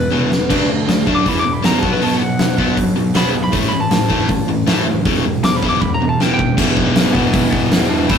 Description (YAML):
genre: hard rock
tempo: 158 BPM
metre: 4/4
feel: straight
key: unclear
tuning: A4 = 439 Hz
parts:
  - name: lightly driven lead guitar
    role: melody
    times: 0.0-8.2 s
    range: B3 to D6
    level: -21 LUFS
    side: left 1 dB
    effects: slapback echo
  - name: cranked stack guitar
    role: riff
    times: 0.0-8.2 s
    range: E2 to D4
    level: -20 LUFS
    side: left 6 dB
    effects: overdrive
  - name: crunchy overdriven guitar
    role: riff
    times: 0.0-8.2 s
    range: E2 to D4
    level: -20 LUFS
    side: right 6 dB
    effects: none
  - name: fuzz picked electric bass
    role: bass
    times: 0.0-8.2 s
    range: E1 to F#2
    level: -23 LUFS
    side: equal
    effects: overdrive
  - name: huge arena drum kit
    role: drums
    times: 0.1-8.2 s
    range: crash cymbal, hi-hat, kick drum, snare drum, toms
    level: -18 LUFS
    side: left 1 dB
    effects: none
  - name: heavy high-gain guitar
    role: riff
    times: 6.6-8.2 s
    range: E2 to A3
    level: -25 LUFS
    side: right 1 dB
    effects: distortion
room: moderate studio ambience, RT60 0.5 s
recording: rough rehearsal-room recording, tube saturation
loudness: -13 LUFS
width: side -7 dB against mid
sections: 0.0-6.6 A section; 6.6-8.2 B section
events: lead electric guitar solo 0.0-6.6; drum fill 0.1-0.5, 5.8-6.6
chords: 0.5 D; 1.3 E5; 1.8 B5; 3.5 A5; 5.1 E5; 6.6 Em